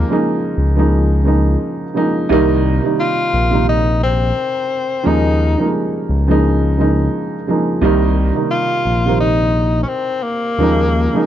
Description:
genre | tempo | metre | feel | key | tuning
lo-fi hip hop | 87 BPM | 4/4 | swing 56% on 16ths | unclear | A4 = 440 Hz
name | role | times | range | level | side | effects
mellow tenor saxophone | melody | 0.0-11.3 s | Bb3 to F4 | -18 LUFS | left 3 dB | low-pass filter
dark upright piano | accompaniment | 0.0-11.3 s | C3 to Eb4 | -17 LUFS | right 2 dB | cassette tape, low-pass filter
smooth synth bass | bass | 0.0-11.1 s | Bb1 to Eb2 | -16 LUFS | left 1 dB | none
room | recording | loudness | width
light reverb | none | -13 LUFS | side -11 dB against mid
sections
0.0-11.3 A section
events
none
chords
0.0 Eb9sus4; 2.3 Cm7; 5.1 Eb9sus4; 7.8 Cm7; 10.6 Eb9sus4

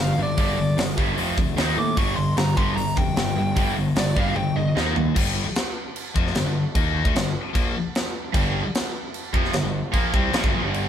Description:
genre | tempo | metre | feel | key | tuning
hard rock | 151 BPM | 4/4 | straight | G minor | A4 = 440 Hz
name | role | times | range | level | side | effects
biting lead guitar | melody | 0.0-4.8 s | D5 to D6 | -27 LUFS | equal | overdrive
cranked stack guitar | riff | 0.0-5.1, 8.3-10.9 s | F2 to Eb4 | -27 LUFS | right 8 dB | overdrive
high-gain distorted guitar | riff | 0.0-10.9 s | F2 to Eb4 | -25 LUFS | left 5 dB | distortion
fuzz picked electric bass | bass | 0.0-10.9 s | F1 to A2 | -27 LUFS | right 1 dB | overdrive
tight metal drum kit | drums | 0.4-10.8 s | crash cymbal, hi-hat, kick drum, snare drum, toms | -24 LUFS | equal | none
room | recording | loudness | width
moderate studio reverb, RT60 0.6 s | band playing live in one room | -20 LUFS | side -9 dB against mid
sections
0.0-5.2 A section; 5.2-10.9 B section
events
lead electric guitar solo 0.0-5.2; drum fill 4.4-5.2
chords
0.0 G5; 1.2 F5; 1.6 Eb5; 2.0 G5; 4.8 Eb5; 5.2 Gm

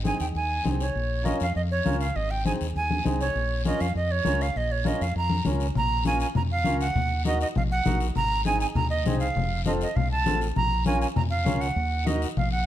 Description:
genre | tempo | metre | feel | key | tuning
latin, cumbia | 200 BPM | 4/4 | straight | Bb minor | A4 = 441 Hz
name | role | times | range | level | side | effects
mellow accordion | accompaniment | 0.0-12.3 s | C4 to Bb4 | -32 LUFS | left 1 dB | none
fingered electric bass | bass | 0.0-12.7 s | F1 to F2 | -27 LUFS | equal | none
guiro | percussion | 0.0-12.7 s | none | -41 LUFS | left 7 dB | none
bright jazz flute | melody | 0.1-12.7 s | Db5 to Bb5 | -28 LUFS | right 3 dB | none
congas | percussion | 0.1-12.5 s | none | -29 LUFS | left 4 dB | none
room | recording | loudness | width
light reverb | dark, warm production | -23 LUFS | side -12 dB against mid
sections
0.0-5.8 A section; 5.8-12.7 B section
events
none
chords
0.0 Ab; 0.9 Bbm; 2.2 Ab; 3.4 Bbm; 7.0 Ebm; 8.2 Ab; 9.4 F; 10.6 Bbm; 11.8 Ebm

